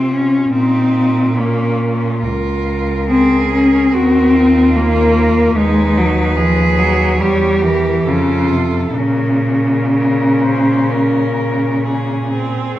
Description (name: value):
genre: classical, lyrical piece for cello ensemble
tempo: 61-74 BPM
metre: 4/4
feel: rubato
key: Bb minor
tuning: A4 = 439 Hz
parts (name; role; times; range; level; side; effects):
- warm cello; melody; 0.0-12.8 s; F4 to C#5; -23 LUFS; left 5 dB; none
- rich cello; accompaniment; 0.0-12.3 s; C3 to Db4; -14 LUFS; left 1 dB; none
- rich cello; bass; 0.0-12.5 s; Db2 to C3; -19 LUFS; right 2 dB; none
- rich cello; second line; 0.5-12.8 s; C4 to Ab4; -20 LUFS; right 5 dB; none
room: moderate recital hall reverb, RT60 1.5 s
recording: worn, warbling old tape, cassette tape, warbly pitch drift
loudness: -12 LUFS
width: side -14 dB against mid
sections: 0.0-12.8 A section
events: none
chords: 0.0 F5/C; 0.5 Bbm; 2.2 Bbm/Db; 3.9 Eb5; 5.6 B/D#; 7.2 Edim7; 8.1 F; 9.0 Bbm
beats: 0.54 1.38 | 2.23 3.10 3.94 4.76 | 5.57 6.38 7.21 8.07 | 8.97 9.95 10.90 11.84 | 12.78